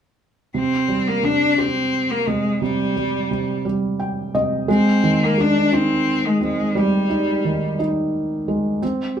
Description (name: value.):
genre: pop.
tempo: 58 BPM (dotted quarters).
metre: 6/8.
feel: straight.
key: C minor.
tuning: A4 = 439 Hz.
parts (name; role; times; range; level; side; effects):
felt-muted upright piano; accompaniment; 0.5-9.2 s; C3 to G5; -20 LUFS; right 1 dB; none.
clear cello; melody; 0.6-7.8 s; G3 to D4; -20 LUFS; left 2 dB; none.
room: wet studio reverb, RT60 0.6 s.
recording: band playing live in one room.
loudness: -17 LUFS.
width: side -8 dB against mid.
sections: 0.5-9.2 A section.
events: felt piano fill 3.6-4.7.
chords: 0.5 C5; 4.7 Abmaj7.